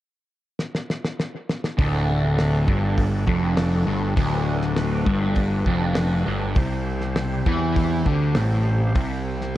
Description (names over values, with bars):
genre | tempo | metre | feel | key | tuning
psychedelic rock | 100 BPM | 4/4 | straight | D mixolydian | A4 = 440 Hz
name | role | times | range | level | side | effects
damped 70s drum kit | drums | 0.6-9.5 s | hi-hat, kick drum, snare drum | -24 LUFS | equal | analog delay
bright tonewheel organ | sustained chords | 1.8-9.6 s | C3 to C5 | -32 LUFS | right 2 dB | slow rotary speaker
fuzz guitar | riff | 1.8-9.6 s | D2 to E3 | -22 LUFS | equal | distortion, phaser
fuzz picked electric bass | bass | 1.8-9.6 s | D1 to E2 | -25 LUFS | equal | overdrive
room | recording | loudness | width
light reverb | echo-heavy mix, cassette tape | -20 LUFS | side -14 dB against mid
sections
0.0-1.8 A section; 1.8-9.6 B section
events
drum fill 0.6-1.8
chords
0.0 N.C.; 1.8 D; 6.6 C5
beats
0.59 1.19 | 1.79 2.38 2.98 3.58 | 4.18 4.78 5.37 5.97 | 6.57 7.17 7.76 8.36 | 8.96 9.55